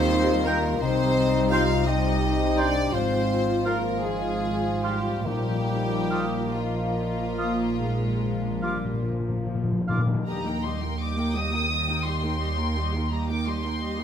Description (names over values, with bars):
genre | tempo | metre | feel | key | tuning
classical, slow romantic movement for symphony orchestra | 46-58 BPM (dotted quarters) | 12/8 | rubato | Eb major | A4 = 440 Hz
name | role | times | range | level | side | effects
warm studio violin section | melody | 0.0-14.0 s | F4 to Eb6 | -33 LUFS | left 4 dB | none
warm symphonic violin section | second line | 0.0-14.0 s | F4 to G5 | -32 LUFS | left 2 dB | none
dark symphonic viola section | accompaniment | 0.0-14.0 s | Eb3 to G4 | -32 LUFS | right 1 dB | none
mellow bassoon | accompaniment | 0.0-9.7 s | Bb3 to G4 | -31 LUFS | right 2 dB | none
warm French horn section | sustained chords | 0.0-9.1 s | F3 to F4 | -30 LUFS | left 5 dB | none
concert harp | arpeggios | 0.0-14.0 s | Ab2 to Bb5 | -32 LUFS | left 8 dB | none
warm symphonic cello section | bass | 0.0-14.0 s | Eb2 to Eb3 | -33 LUFS | right 3 dB | none
warm symphonic double bass section | bass | 0.0-14.0 s | Ab1 to Eb2 | -30 LUFS | right 3 dB | none
bright small flute group | second line | 0.5-10.1 s | Bb5 to Eb6 | -36 LUFS | right 2 dB | none
warm clarinet | second line | 0.5-10.0 s | Eb4 to F4 | -37 LUFS | left 2 dB | none
warm oboe | second line | 0.5-10.0 s | F5 to G5 | -34 LUFS | right 2 dB | none
timpani | percussion | 5.3-10.2 s | Bb2 | -29 LUFS | left 2 dB | none
room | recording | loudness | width
light reverb | close, detailed microphones | -23 LUFS | side -8 dB against mid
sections
0.0-10.3 A section; 10.3-14.0 B section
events
timpani fill 7.8-10.3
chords
0.0 Eb; 0.8 Cm; 2.9 Fm/Ab; 5.3 Bbsus4; 7.8 Bb; 10.3 Eb